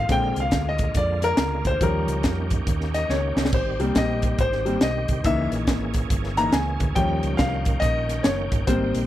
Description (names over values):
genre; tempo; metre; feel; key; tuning
uptempo gospel; 140 BPM; 4/4; swing 63% on 8ths; unclear; A4 = 440 Hz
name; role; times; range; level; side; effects
clear grand piano; accompaniment; 0.0-9.0 s; D3 to Bb5; -24 LUFS; left 2 dB; none
bright tonewheel organ; sustained chords; 0.0-9.1 s; D3 to G5; -32 LUFS; right 4 dB; slow rotary speaker, overdrive, chorus vibrato
hollow-body short-scale fingered electric bass; bass; 0.0-9.1 s; Gb1 to F2; -27 LUFS; equal; none
crisp fusion drum kit; drums; 0.1-9.0 s; crash cymbal, hi-hat, kick drum, snare drum; -24 LUFS; equal; none
room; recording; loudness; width
little or no reverb; none; -20 LUFS; side -13 dB against mid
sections
0.0-9.1 A section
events
grand piano solo 0.0-9.1; drum fill 3.1-3.5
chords
0.1 Bb7; 1.8 Eb7; 3.5 Abmaj7; 5.2 Dbm6; 7.0 Eb7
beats
| 0.10 0.53 0.96 1.39 | 1.81 2.24 2.67 3.10 | 3.53 3.96 4.39 4.82 | 5.25 5.67 6.10 6.53 | 6.96 7.39 7.82 8.25 | 8.68